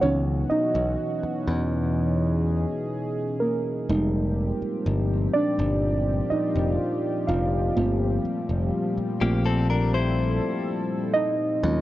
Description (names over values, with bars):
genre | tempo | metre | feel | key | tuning
R&B | 62 BPM | 4/4 | straight | unclear | A4 = 440 Hz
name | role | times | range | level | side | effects
muted felt-like synth keys | accompaniment | 0.0-11.8 s | Fb3 to F5 | -26 LUFS | right 2 dB | chorus
warm analog pad | sustained chords | 0.0-11.8 s | Bb2 to A4 | -28 LUFS | left 1 dB | chorus
modern bright picked electric bass | bass | 0.0-11.8 s | F1 to Fb2 | -25 LUFS | equal | none
direct-recorded clean electric guitar | arpeggios | 9.2-11.4 s | Bb3 to C5 | -29 LUFS | left 5 dB | spring reverb, digital delay
room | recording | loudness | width
light reverb, digital ambience | worn, warbling old tape, cassette tape, warbly pitch drift | -22 LUFS | side -15 dB against mid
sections
0.0-11.8 A section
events
synth keys solo 0.0-11.8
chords
0.0 Dbm11; 3.9 Fm11; 7.8 Gm11